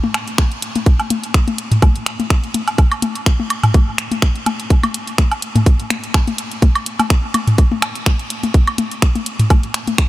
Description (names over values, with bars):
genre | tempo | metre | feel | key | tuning
techno | 125 BPM | 4/4 | swing 55% on 16ths | none | none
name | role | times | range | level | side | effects
electronic toms and woodblock | percussion | 0.0-10.0 s | none | -19 LUFS | left 1 dB | diffuse ambient delay
garage drum kit | drums | 0.1-10.1 s | finger snaps, hi-hat | -22 LUFS | equal | none
electronic kick drum | drums | 0.4-10.1 s | none | -12 LUFS | equal | none
room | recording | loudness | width
light reverb | none | -14 LUFS | side -16 dB against mid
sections
0.0-10.1 A section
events
none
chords
none